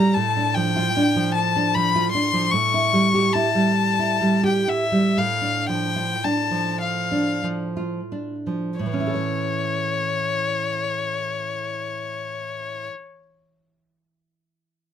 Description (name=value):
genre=romantic duo for violin and classical guitar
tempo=28-51 BPM (dotted quarters)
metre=6/8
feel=rubato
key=unclear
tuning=A4 = 439 Hz
part: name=rich violin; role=melody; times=0.0-12.9 s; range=C#5 to C#6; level=-23 LUFS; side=left 6 dB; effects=none
part: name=nylon-string guitar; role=accompaniment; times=0.0-13.2 s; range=A2 to C#5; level=-22 LUFS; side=right 2 dB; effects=none
room=light reverb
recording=close, detailed microphones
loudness=-20 LUFS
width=side -9 dB against mid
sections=0.0-8.8 A section; 8.8-12.6 B section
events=slowing down 1.4-8.8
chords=0.1 Dm/A; 2.5 A7; 5.2 Dm/A; 8.8 A